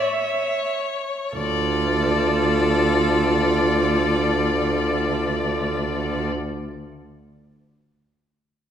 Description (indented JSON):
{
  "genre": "classical, slow romantic movement for string quartet",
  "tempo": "free time",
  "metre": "none",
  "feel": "none",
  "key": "D minor",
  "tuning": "A4 = 440 Hz",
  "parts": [
    { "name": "rich violin", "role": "melody", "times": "0.0-6.3 s", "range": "C#5 to D5", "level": "-26 LUFS", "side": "left 4 dB", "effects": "none" },
    { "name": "clear violin", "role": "second line", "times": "0.0-6.3 s", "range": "A4 to C#5", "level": "-26 LUFS", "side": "left 2 dB", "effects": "none" },
    { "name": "rich viola", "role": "accompaniment", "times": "0.0-6.3 s", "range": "F4 to E5", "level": "-26 LUFS", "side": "right 2 dB", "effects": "none" },
    { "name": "rich cello", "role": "bass", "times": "1.4-6.3 s", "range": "D2", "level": "-23 LUFS", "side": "right 2 dB", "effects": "none" }
  ],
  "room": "wet recital hall reverb, RT60 1.8 s",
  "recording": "heard from further back in the room",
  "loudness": "-19 LUFS",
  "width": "side -9 dB against mid",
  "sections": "0.0-1.4 A section; 1.4-6.6 B section",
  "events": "slowing down 0.0-1.4",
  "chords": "0.0 A (rootless); 1.4 Dm"
}